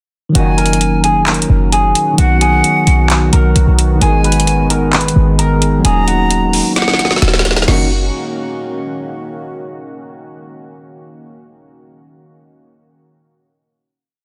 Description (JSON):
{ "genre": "hip hop, trap", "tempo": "131 BPM", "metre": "4/4", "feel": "half-time", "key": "F# major", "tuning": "A4 = 440 Hz", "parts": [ { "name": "mellow electric guitar", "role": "melody", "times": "0.3-7.9 s", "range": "F#4 to B5", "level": "-21 LUFS", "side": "equal", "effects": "delay" }, { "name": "tine electric piano", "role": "accompaniment", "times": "0.3-7.9 s", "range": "D#3 to G#4", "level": "-19 LUFS", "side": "equal", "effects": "none" }, { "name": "warm brass ensemble", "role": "stabs", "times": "0.3-0.8, 4.0-4.5, 7.7-7.8 s", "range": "A#1 to D#3", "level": "-25 LUFS", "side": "equal", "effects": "none" }, { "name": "jazz flute", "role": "second line", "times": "0.4-7.9 s", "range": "F#5 to A#5", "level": "-22 LUFS", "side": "equal", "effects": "delay" }, { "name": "deep dark ambient pad", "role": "sustained chords", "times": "1.1-7.9 s", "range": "D#3 to G#4", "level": "-27 LUFS", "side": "equal", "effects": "chorus, built-in reverb" }, { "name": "short 808-style bass", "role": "bass", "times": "0.4-8.1 s", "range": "D#1 to B1", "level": "-16 LUFS", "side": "equal", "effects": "none" }, { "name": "trap drum kit", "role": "drums", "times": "0.4-7.8 s", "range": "crash cymbal, handclaps, hi-hat, snare drum", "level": "-18 LUFS", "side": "equal", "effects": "vintage 12-bit sampler grit" } ], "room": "digital ambience", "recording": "dense, heavily limited modern master", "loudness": "-13 LUFS", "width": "mono", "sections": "0.4-7.7 hook; 7.7-9.5 final chord", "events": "drum fill 6.8-7.7", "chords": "0.4 F#6; 2.2 B; 4.0 G#m; 5.8 D#m7; 7.7 F#6", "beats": "| 0.35 0.81 1.27 1.73 | 2.18 2.64 3.10 3.56 | 4.01 4.47 4.93 5.39 | 5.85 6.30 6.76 7.22 | 7.68" }